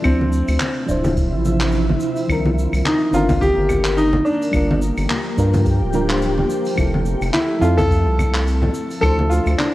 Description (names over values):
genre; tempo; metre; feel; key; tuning
sunset chillout; 107 BPM; 4/4; swing 56% on 16ths; F major; A4 = 440 Hz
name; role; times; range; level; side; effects
clear grand piano; melody; 0.0-9.7 s; C4 to A4; -20 LUFS; equal; ping-pong delay
mellow FM electric piano; accompaniment; 0.0-9.7 s; Eb3 to C5; -24 LUFS; left 1 dB; chorus, phaser, auto-pan, ping-pong delay
shimmering ambient pad; sustained chords; 0.0-9.7 s; C3 to G4; -26 LUFS; equal; chorus, built-in reverb
jazz brush drum kit; drums; 0.0-9.7 s; claves, handclaps, hi-hat, shaker; -27 LUFS; equal; none
round analog bass; bass; 0.1-9.6 s; D1 to G2; -20 LUFS; equal; none
electronic kick drum; drums; 0.1-9.2 s; none; -22 LUFS; equal; none
congas; percussion; 0.2-9.7 s; none; -25 LUFS; left 1 dB; none
room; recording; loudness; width
moderate lush hall reverb, RT60 2.2 s; worn, warbling old tape, cassette tape, warbly pitch drift; -16 LUFS; side -16 dB against mid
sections
0.0-9.7 A section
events
none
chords
0.1 Dm9; 2.3 Cm9; 4.5 Gm7; 6.8 Fmaj7; 9.0 Dm9